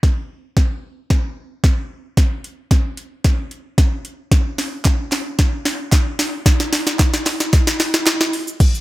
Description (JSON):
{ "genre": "pop", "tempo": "112 BPM", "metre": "4/4", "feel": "straight", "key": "none", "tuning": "none", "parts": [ { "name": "smooth R&B drum kit", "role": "drums", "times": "0.0-8.8 s", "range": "crash cymbal, hi-hat, kick drum, shaker, snare drum", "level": "-15 LUFS", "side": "equal", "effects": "none" }, { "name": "group handclap", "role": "percussion", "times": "4.8-8.2 s", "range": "none", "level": "-29 LUFS", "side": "right 4 dB", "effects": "none" } ], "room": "little or no reverb", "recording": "none", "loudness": "-16 LUFS", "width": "side -18 dB against mid", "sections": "0.0-8.6 A section", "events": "build-up 0.0-8.6; drum fill 0.0-8.6", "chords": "none", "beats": "| 0.03 0.57 1.10 1.64 | 2.17 2.71 3.25 3.78 | 4.32 4.85 5.39 5.92 | 6.46 7.00 7.53 8.07 | 8.60" }